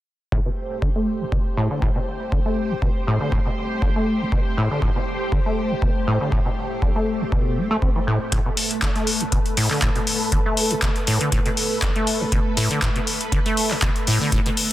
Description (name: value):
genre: acid house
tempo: 120 BPM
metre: 4/4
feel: swing 54% on 16ths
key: A minor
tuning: A4 = 439 Hz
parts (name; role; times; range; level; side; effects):
- string machine, full ensemble; sustained chords; 0.3-14.7 s; A3 to C5; -27 LUFS; right 1 dB; phaser, ensemble chorus, sidechain pumping
- acid bass, saw; riff; 0.3-14.5 s; A2 to C4; -24 LUFS; equal; lush chorus, sidechain pumping, analog delay
- electronic kick drum; drums; 0.3-14.4 s; none; -23 LUFS; equal; none
- booming analog drum machine; drums; 8.3-14.7 s; handclaps, hi-hat; -23 LUFS; left 2 dB; low-pass filter on hats, low-pass filter on snare
room: light reverb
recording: dense, heavily limited modern master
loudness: -19 LUFS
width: side -14 dB against mid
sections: 0.3-14.7 A section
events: filter sweep on acid bass 0.3-14.7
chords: 0.3 Am7